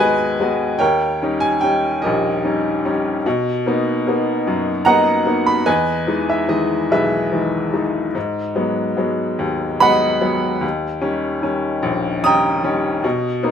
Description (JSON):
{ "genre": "classical, lyrical solo piano", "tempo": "49 BPM (dotted quarters)", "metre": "6/8", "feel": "rubato", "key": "unclear", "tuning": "A4 = 440 Hz", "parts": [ { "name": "bright upright piano", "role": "solo", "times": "0.0-13.5 s", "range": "A#1 to D#6", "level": "-16 LUFS", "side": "equal", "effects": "none" } ], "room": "light reverb", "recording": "close, detailed microphones", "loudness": "-16 LUFS", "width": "side -8 dB against mid", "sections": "0.0-13.5 A section", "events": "none", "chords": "0.0 G#m7; 0.8 D#7; 3.3 Bmaj7; 5.7 Emaj7; 8.2 G#m7; 10.6 D#7" }